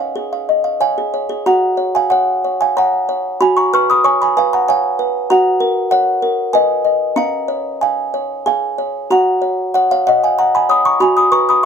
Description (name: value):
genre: classical, lullaby for music box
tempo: 94 BPM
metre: 3/4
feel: rubato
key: F# major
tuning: A4 = 440 Hz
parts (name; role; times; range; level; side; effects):
- music box; solo; 0.0-11.7 s; C#4 to E#6; -13 LUFS; equal; none
room: light reverb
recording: none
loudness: -13 LUFS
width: side -6 dB against mid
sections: 0.0-1.5 A section; 1.5-11.7 B section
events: none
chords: 0.0 C#; 1.5 F#; 3.4 C#7/F#; 5.3 F#; 6.5 G#m/B; 7.2 C#; 9.1 F#; 11.0 C#7(no3)/F#